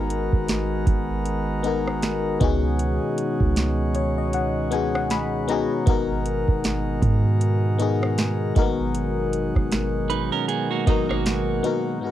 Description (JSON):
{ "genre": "contemporary R&B", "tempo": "78 BPM", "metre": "4/4", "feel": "swing 58% on 16ths", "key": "G# minor", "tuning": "A4 = 438 Hz", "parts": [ { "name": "FM electric piano", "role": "accompaniment", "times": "0.0-12.1 s", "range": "G#2 to B5", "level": "-26 LUFS", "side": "left 7 dB", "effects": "chorus, cassette tape" }, { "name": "pipe organ, sparkling flutes", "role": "sustained chords", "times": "0.0-12.1 s", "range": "B2 to A#4", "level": "-27 LUFS", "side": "right 1 dB", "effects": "cassette tape" }, { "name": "clean 808-style bass", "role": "bass", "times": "0.0-11.6 s", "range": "G#1 to G#2", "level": "-25 LUFS", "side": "right 1 dB", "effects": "none" }, { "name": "booming analog drum machine", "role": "drums", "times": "0.1-11.8 s", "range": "hi-hat, kick drum, rim click, snare drum", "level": "-24 LUFS", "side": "right 2 dB", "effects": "cassette tape" }, { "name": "clean electric guitar", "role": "arpeggios", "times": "10.1-12.0 s", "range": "F#3 to B4", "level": "-26 LUFS", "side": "right 11 dB", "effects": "spring reverb, cassette tape" } ], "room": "light reverb", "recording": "home recording on cassette", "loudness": "-20 LUFS", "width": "side -12 dB against mid", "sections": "0.0-12.0 A section", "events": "FM electric piano fill 3.6-5.9", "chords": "0.0 G#m9; 2.4 C#9sus4; 5.9 G#m9" }